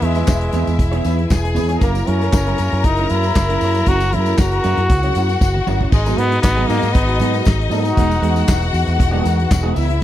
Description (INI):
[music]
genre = disco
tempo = 117 BPM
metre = 4/4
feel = straight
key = unclear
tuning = A4 = 445 Hz
[part]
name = brilliant trombone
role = melody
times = 0.0-8.7 s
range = G#3 to F#4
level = -21 LUFS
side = equal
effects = none
[part]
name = clear studio string section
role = second line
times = 0.0-10.0 s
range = D#4 to A#5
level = -23 LUFS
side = left 5 dB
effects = none
[part]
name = electric guitar at the edge of break-up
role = accompaniment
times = 0.0-10.0 s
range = E3 to C#5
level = -24 LUFS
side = right 4 dB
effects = none
[part]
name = dark French horn section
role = sustained chords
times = 0.0-10.0 s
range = C#3 to F#4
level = -27 LUFS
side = left 2 dB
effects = none
[part]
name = fingered electric bass with an envelope filter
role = bass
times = 0.0-10.0 s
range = E1 to G#2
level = -19 LUFS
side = equal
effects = none
[part]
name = damped 70s drum kit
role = drums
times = 0.0-10.0 s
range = crash cymbal, handclaps, hi-hat, kick drum, snare drum, toms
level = -17 LUFS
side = equal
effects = none
[part]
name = tambourine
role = percussion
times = 0.1-9.9 s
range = none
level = -36 LUFS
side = left 10 dB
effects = none
[sound]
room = little or no reverb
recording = dry, close 1970s-style studio recording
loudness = -14 LUFS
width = side -12 dB against mid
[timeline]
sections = 0.0-5.9 A section; 5.9-10.0 B section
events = drum fill 5.4-5.9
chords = 0.0 Emaj7; 1.8 F#7; 5.9 G#m7; 8.0 Emaj7